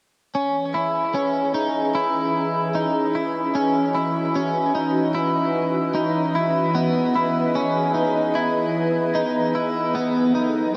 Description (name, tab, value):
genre	dream pop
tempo	75 BPM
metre	4/4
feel	straight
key	C# minor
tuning	A4 = 443 Hz
part	ethereal airy pad	sustained chords	0.6-10.8 s	E3 to D#5	-26 LUFS	equal	ensemble chorus, built-in reverb
part	electric guitar at the edge of break-up	arpeggios	0.3-10.7 s	B3 to E4	-24 LUFS	equal	analog chorus, delay
room	wet huge ambient reverb, RT60 8.2 s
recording	dreamy mix soaked in reverb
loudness	-22 LUFS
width	mono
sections	0.3-10.8 A section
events	none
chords	0.3 C#m9; 6.7 Emaj7; 9.9 B7